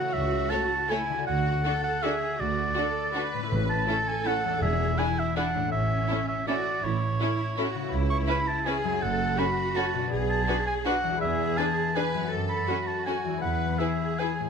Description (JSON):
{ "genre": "classical, orchestral ballroom waltz", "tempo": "163 BPM", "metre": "3/4", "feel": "uneven beats, rubato", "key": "A major", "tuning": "A4 = 440 Hz", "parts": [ { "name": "warm oboe", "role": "second line", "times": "0.0-14.5 s", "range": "C#5 to C#6", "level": "-29 LUFS", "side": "right 2 dB", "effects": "none" }, { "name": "concert harp", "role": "arpeggios", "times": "0.0-14.5 s", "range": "E2 to C#5", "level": "-33 LUFS", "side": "left 12 dB", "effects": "none" }, { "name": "rich studio cello section", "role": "bass", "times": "0.0-14.5 s", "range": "C#4 to B4", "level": "-32 LUFS", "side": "right 2 dB", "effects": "none" }, { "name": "clear studio double bass section", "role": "bass", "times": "0.1-13.7 s", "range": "E1 to F#2", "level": "-32 LUFS", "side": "right 4 dB", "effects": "none" }, { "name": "rich symphonic violin section", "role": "melody", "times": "0.5-14.3 s", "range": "G#4 to C#5", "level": "-38 LUFS", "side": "left 4 dB", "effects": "none" }, { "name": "clear symphonic violin section", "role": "second line", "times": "0.5-14.3 s", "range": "E4 to A4", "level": "-36 LUFS", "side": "left 3 dB", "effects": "none" }, { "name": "rich symphonic viola section", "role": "accompaniment", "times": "0.5-14.3 s", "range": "A3 to E4", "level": "-36 LUFS", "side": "right 2 dB", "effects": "none" }, { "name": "timpani", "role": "percussion", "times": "3.5-5.1 s", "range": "E2 to A2", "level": "-31 LUFS", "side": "left 2 dB", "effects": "none" } ], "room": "moderate scoring stage reverb, RT60 1.6 s", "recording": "none", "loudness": "-24 LUFS", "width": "side -6 dB against mid", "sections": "0.0-14.5 A section", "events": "none", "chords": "0.1 A/C#; 1.3 D; 3.5 A; 4.6 E7; 5.7 A; 7.9 C#m7; 9.0 F#m; 10.1 Bm7; 11.2 E7; 12.3 F#m; 13.4 E" }